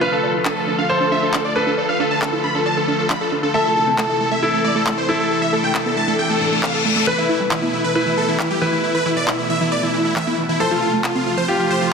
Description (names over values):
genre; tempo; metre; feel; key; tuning
uplifting trance; 136 BPM; 4/4; straight; A minor; A4 = 440 Hz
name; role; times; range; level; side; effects
supersaw chords; melody; 0.0-11.9 s; E4 to B5; -20 LUFS; equal; low-pass filter, digital delay
clear baby grand piano; second line; 0.0-11.9 s; E4 to C5; -22 LUFS; left 1 dB; ping-pong delay
lush unison pad; sustained chords; 0.0-11.9 s; B2 to F4; -24 LUFS; equal; chorus, vintage 12-bit sampler grit
wide unison pluck; arpeggios; 0.0-11.9 s; A2 to D5; -26 LUFS; right 3 dB; digital delay
electronic handclaps; drums; 0.5-11.1 s; none; -26 LUFS; left 1 dB; none
reverse cymbal; sound effects; 6.3-7.1 s; none; -22 LUFS; left 6 dB; none
room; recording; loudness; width
moderate lush hall reverb, RT60 2.3 s; dense, heavily limited modern master; -16 LUFS; side -5 dB against mid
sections
0.0-11.9 A section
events
reverse cymbal 6.3-7.1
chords
0.0 Dm; 3.5 Am; 7.1 Esus4; 10.6 F